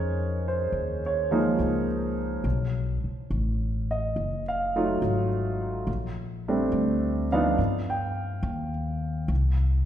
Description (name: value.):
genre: jazz ballad.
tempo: 70 BPM.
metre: 4/4.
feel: swing 69% on 8ths.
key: unclear.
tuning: A4 = 440 Hz.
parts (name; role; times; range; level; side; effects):
warm concert grand piano; accompaniment; 0.0-9.3 s; F3 to G5; -26 LUFS; right 2 dB; none.
upright bass; bass; 0.0-9.9 s; F#1 to G2; -28 LUFS; left 1 dB; none.
room: wet scoring stage reverb, RT60 1.7 s.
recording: recorded in a church or concert hall, nothing above 11.0 kHz.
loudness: -24 LUFS.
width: side -10 dB against mid.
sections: 0.0-9.9 A section.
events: none.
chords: 0.0 Gbmaj13 (rootless); 2.4 B7#11; 5.9 Bbmaj13; 7.6 Ebadd9; 9.3 N.C..